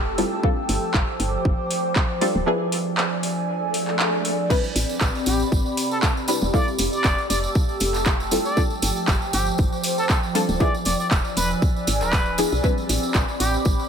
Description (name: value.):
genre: deep house.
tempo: 118 BPM.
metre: 4/4.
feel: swing 54% on 16ths.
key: A minor.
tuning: A4 = 440 Hz.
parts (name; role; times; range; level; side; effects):
deep dark ambient pad; sustained chords; 0.0-13.9 s; C4 to E6; -31 LUFS; right 2 dB; chorus, built-in reverb, vintage 12-bit sampler grit, sidechain pumping.
filtered dub chord stab; stabs; 0.0-13.9 s; F3 to B4; -26 LUFS; left 1 dB; wide subtle chorus, cassette tape, sidechain pumping, dub echo.
woody FM bass; bass; 0.0-13.7 s; D1 to B1; -26 LUFS; equal; sidechain pumping.
airy breathy pad; texture; 0.0-13.9 s; F3 to E6; -27 LUFS; equal; chorus, sidechain pumping.
deep house drum kit; drums; 0.2-13.5 s; crash cymbal, handclaps, hi-hat; -26 LUFS; equal; overdrive.
electronic kick drum; drums; 0.4-13.8 s; none; -22 LUFS; equal; none.
swell; sound effects; 3.6-4.5 s; none; -29 LUFS; left 2 dB; none.
tambourine; percussion; 4.5-13.9 s; none; -31 LUFS; right 4 dB; none.
trumpet with plunger mute; melody; 5.3-13.5 s; G4 to D5; -28 LUFS; equal; digital delay.
room: light reverb.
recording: none.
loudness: -19 LUFS.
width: side -7 dB against mid.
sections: 0.0-13.9 A section.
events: swell 3.6-4.5.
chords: 0.4 G7sus4; 2.5 E7b9; 4.5 Am11; 6.5 Fmaj9; 8.6 G7sus4; 10.6 E7b9; 12.6 Am11.